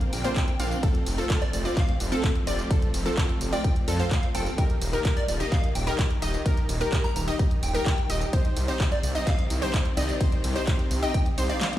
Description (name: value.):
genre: EDM, festival progressive house.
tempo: 128 BPM.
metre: 4/4.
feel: straight.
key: unclear.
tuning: A4 = 440 Hz.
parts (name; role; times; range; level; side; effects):
rich studio string section; sustained chords; 0.0-11.8 s; D3 to C4; -36 LUFS; left 2 dB; sidechain pumping.
wide unison pluck; arpeggios; 0.0-11.8 s; A4 to F5; -33 LUFS; equal; sidechain pumping, dub echo.
supersaw stab; riff; 0.0-11.8 s; Bb3 to F5; -32 LUFS; equal; sidechain pumping, dub echo.
big-room dance drum kit; drums; 0.0-11.8 s; handclaps, hi-hat, ride cymbal, snare drum, tambourine; -33 LUFS; right 1 dB; none.
plucky unison lead; melody; 0.1-11.8 s; D5 to Bb5; -35 LUFS; equal; lush chorus, dub echo.
wide detuned saw bass; bass; 0.1-11.5 s; Eb1 to F2; -28 LUFS; equal; chorus, sidechain pumping.
electronic kick drum; drums; 0.4-11.2 s; none; -24 LUFS; equal; none.
room: little or no reverb.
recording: played on a big sound system in a bare room, large studio reverb.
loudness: -23 LUFS.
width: side -13 dB against mid.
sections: 0.0-11.8 A section.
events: kick drops out 11.6; drum fill 11.6.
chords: 0.0 Bbadd9; 0.8 F; 4.6 Eb; 8.3 Cm.